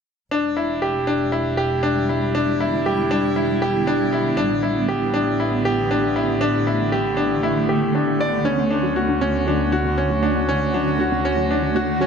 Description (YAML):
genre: electronica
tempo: 118 BPM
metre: 4/4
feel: straight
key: E dorian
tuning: A4 = 441 Hz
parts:
  - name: granular cloud pad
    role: sustained chords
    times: 1.6-12.1 s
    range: D3 to C#5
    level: -24 LUFS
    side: right 1 dB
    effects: built-in reverb
  - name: bright grand piano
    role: riff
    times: 0.3-12.1 s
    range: C#4 to D5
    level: -20 LUFS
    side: left 1 dB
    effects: ping-pong delay
  - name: warm studio double bass section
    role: bass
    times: 0.3-12.1 s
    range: E1 to D2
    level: -28 LUFS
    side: right 1 dB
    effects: none
  - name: soft round pluck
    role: arpeggios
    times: 8.4-12.1 s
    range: C#4 to F#4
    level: -28 LUFS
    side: right 1 dB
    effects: chorus, ping-pong delay
room: moderate echo chamber reverb, RT60 1.4 s, studio ambience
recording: none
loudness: -18 LUFS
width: side -6 dB against mid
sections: 0.3-12.1 A section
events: none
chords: 0.3 Em7; 4.4 A9sus4; 8.5 Dmaj7